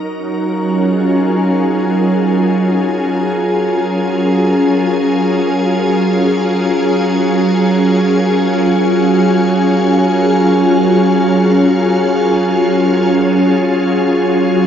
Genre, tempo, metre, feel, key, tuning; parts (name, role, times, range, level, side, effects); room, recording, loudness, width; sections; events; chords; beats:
ambient; free time; F# major; A4 = 441 Hz
soft additive organ-like pad; solo; 0.0-14.7 s; F#3 to A#4; -11 LUFS; equal; ensemble chorus, built-in reverb, tape echo
wet plate reverb, RT60 3.1 s; echo-heavy mix; -11 LUFS; side -8 dB against mid
0.0-13.2 A section; 13.2-14.7 B section
0.0 F#maj9
free time